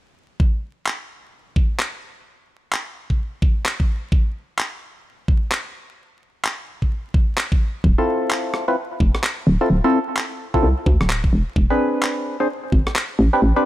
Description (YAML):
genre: UK garage, two-step garage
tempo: 129 BPM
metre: 4/4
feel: swing 62% on 16ths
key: D dorian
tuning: A4 = 441 Hz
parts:
  - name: electronic kick drum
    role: drums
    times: 0.4-12.8 s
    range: none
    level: -18 LUFS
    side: equal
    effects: small room reverb
  - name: electronic handclaps and rim click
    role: drums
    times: 0.9-13.1 s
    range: none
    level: -23 LUFS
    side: equal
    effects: small room reverb
  - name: hollow knocking FM bass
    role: bass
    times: 7.8-13.5 s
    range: D1 to D2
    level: -17 LUFS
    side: equal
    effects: none
  - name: percussive organ stab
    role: stabs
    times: 8.0-13.7 s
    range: C4 to C5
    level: -20 LUFS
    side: equal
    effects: chorus, phaser, tape echo
room: little or no reverb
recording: vinyl crackle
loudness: -18 LUFS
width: side -14 dB against mid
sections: 0.4-13.7 A section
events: none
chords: 0.4 N.C.; 7.8 Dm9; 11.3 E7b13 (rootless)